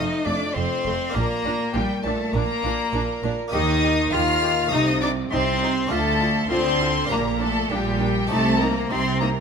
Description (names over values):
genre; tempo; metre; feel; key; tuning
classical, baroque-style concerto movement with solo episodes; 101 BPM; 4/4; straight; Bb major; A4 = 440 Hz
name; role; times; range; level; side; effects
clear cello; melody; 0.0-9.3 s; G3 to F4; -25 LUFS; left 2 dB; none
rich chamber violin section; melody; 0.0-9.3 s; G5 to F6; -28 LUFS; left 2 dB; none
rich chamber violin section; second line; 0.0-9.4 s; G4 to F5; -27 LUFS; left 3 dB; none
harpsichord; accompaniment; 0.0-9.4 s; F2 to A4; -32 LUFS; right 1 dB; none
warm symphonic viola section; accompaniment; 0.0-9.3 s; A3 to G4; -32 LUFS; right 2 dB; none
clear chamber double bass section; bass; 0.0-9.4 s; F1 to Eb2; -28 LUFS; right 3 dB; none
rich chamber cello section; bass; 0.0-9.4 s; F2 to Eb3; -28 LUFS; right 3 dB; none
room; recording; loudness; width
moderate recital hall reverb, RT60 1.4 s; none; -20 LUFS; side -6 dB against mid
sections
0.0-9.4 A section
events
none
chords
0.0 F; 1.2 Bb; 3.5 Eb; 4.7 Adim/C; 5.9 Dm; 7.1 Gm/Bb; 8.3 Cm